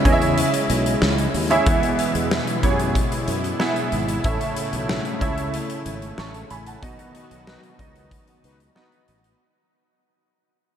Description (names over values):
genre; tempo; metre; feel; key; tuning
1980s-style pop; 93 BPM; 4/4; straight; unclear; A4 = 440 Hz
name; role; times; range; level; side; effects
clear baby grand piano; accompaniment; 0.0-9.4 s; A2 to C#6; -23 LUFS; right 2 dB; analog chorus
brassy analog pad; sustained chords; 0.0-9.4 s; B2 to F#4; -27 LUFS; left 1 dB; chorus
sustaining fretless electric bass; bass; 0.1-9.3 s; G#1 to F#2; -26 LUFS; equal; ensemble chorus
big rock drum kit; drums; 0.1-9.4 s; hi-hat, kick drum, snare drum; -24 LUFS; left 1 dB; none
analog synth brass; stabs; 7.5-9.0 s; D#4 to B4; -42 LUFS; left 1 dB; none
room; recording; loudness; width
wet huge ambient reverb, RT60 8.0 s; dreamy mix soaked in reverb; -19 LUFS; side -9 dB against mid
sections
0.0-9.4 A section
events
fade-out 0.0-9.4; band accent 6.8-9.4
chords
0.0 C#m; 1.7 E; 4.2 A; 6.8 B